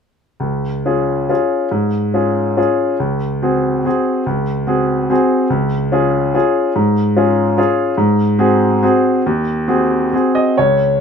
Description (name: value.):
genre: classical, piano waltz.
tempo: 127-155 BPM.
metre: 3/4.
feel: rubato.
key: Db major.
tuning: A4 = 440 Hz.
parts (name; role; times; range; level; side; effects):
clear baby grand piano; solo; 0.4-11.0 s; Db2 to Eb5; -13 LUFS; left 1 dB; none.
room: light reverb.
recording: minimal, uncompressed stereo recording.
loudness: -13 LUFS.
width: side -6 dB against mid.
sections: 0.4-10.6 A section.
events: none.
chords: 0.4 Db; 3.0 Ab7/Db; 5.5 Db; 8.0 Ab7.